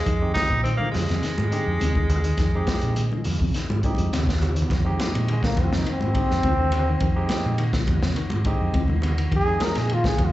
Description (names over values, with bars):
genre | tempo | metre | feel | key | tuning
afrobeat | 104 BPM | 4/4 | straight | F dorian | A4 = 441 Hz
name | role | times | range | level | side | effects
clear tenor saxophone | melody | 0.0-4.1 s | Ab3 to Eb4 | -28 LUFS | equal | plate reverb, slapback echo, tape echo
barky tine electric piano | accompaniment | 0.1-9.9 s | Ab3 to Ab4 | -31 LUFS | right 2 dB | overdrive, plate reverb, slapback echo
clean electric guitar | arpeggios | 0.1-10.2 s | C3 to F3 | -31 LUFS | left 4 dB | spring reverb, plate reverb, slapback echo
hollow-body short-scale fingered electric bass | bass | 0.1-10.3 s | Eb2 to Bb2 | -24 LUFS | equal | none
crunchy breakbeat drum kit | drums | 0.1-10.3 s | hi-hat, kick drum, ride cymbal, snare drum | -27 LUFS | equal | none
congas | percussion | 0.1-10.3 s | none | -30 LUFS | right 1 dB | none
clear trombone | melody | 5.3-10.3 s | Ab3 to Bb4 | -25 LUFS | left 1 dB | plate reverb, slapback echo, tape echo
room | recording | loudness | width
light reverb | live gig heard through the venue's PA, club reverb, nothing above 8.0 kHz | -20 LUFS | side -15 dB against mid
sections
0.0-4.7 A section; 4.7-10.3 B section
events
drum fill 3.8-4.7; trombone solo 4.7-10.3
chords
0.0 Fm7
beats
| 0.07 0.65 1.23 1.81 | 2.39 2.97 3.55 4.13 | 4.71 5.28 5.86 6.44 | 7.02 7.60 8.18 8.75 | 9.33 9.91